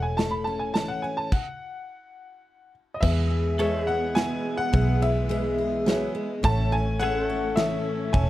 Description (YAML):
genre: honky-tonk and classic country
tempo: 106 BPM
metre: 3/4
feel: straight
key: unclear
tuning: A4 = 441 Hz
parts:
  - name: clear upright piano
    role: melody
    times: 0.0-8.3 s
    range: D#5 to B5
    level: -30 LUFS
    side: left 1 dB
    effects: none
  - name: picked steel-string acoustic guitar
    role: accompaniment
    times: 0.0-8.3 s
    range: A2 to A4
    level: -29 LUFS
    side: left 3 dB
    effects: none
  - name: pedal steel guitar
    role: sustained chords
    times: 0.0-8.3 s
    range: G#4 to E5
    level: -37 LUFS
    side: right 1 dB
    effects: none
  - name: vintage muted fingered electric bass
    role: bass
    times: 0.0-8.3 s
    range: E1 to E2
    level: -26 LUFS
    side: equal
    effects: none
  - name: natural country drum kit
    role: drums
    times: 0.2-8.3 s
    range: crash cymbal, kick drum, ride cymbal, snare drum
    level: -27 LUFS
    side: equal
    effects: none
  - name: warm concert grand piano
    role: accompaniment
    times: 3.0-8.3 s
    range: G#4 to D#6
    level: -34 LUFS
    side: right 4 dB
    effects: none
  - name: warm chamber string section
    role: sustained chords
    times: 3.0-8.3 s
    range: E3 to C#4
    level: -33 LUFS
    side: right 3 dB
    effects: none
room: light reverb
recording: dark, warm production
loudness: -22 LUFS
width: side -15 dB against mid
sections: 0.0-3.0 A section; 3.0-8.3 B section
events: stop 1.3-3.0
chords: 0.0 A; 1.3 N.C.; 3.0 E; 6.4 A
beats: 0.19 0.76 | 1.32 1.89 2.46 | 3.03 3.60 4.17 | 4.73 5.30 5.87 | 6.44 7.00 7.57 | 8.14